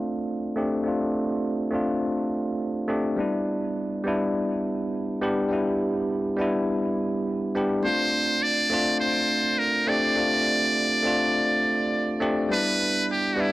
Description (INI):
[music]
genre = chillout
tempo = 103 BPM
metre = 4/4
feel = swing 58% on 16ths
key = unclear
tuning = A4 = 444 Hz
[part]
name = bell-like tine electric piano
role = accompaniment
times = 0.0-13.5 s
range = G3 to G4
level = -24 LUFS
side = equal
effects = auto-pan, low-pass filter, analog delay
[part]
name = trumpet with metal mute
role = melody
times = 7.9-13.5 s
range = E4 to D5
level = -23 LUFS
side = equal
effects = vintage 12-bit sampler grit, tape echo
[sound]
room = light reverb, studio reverb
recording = dry, gritty hardware recording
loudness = -22 LUFS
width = side -18 dB against mid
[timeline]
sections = 0.0-13.5 A section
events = filter sweep on tine electric piano 0.0-13.5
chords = 0.0 F69/A; 3.2 G6; 7.8 Bbmaj13/A (rootless); 12.5 G6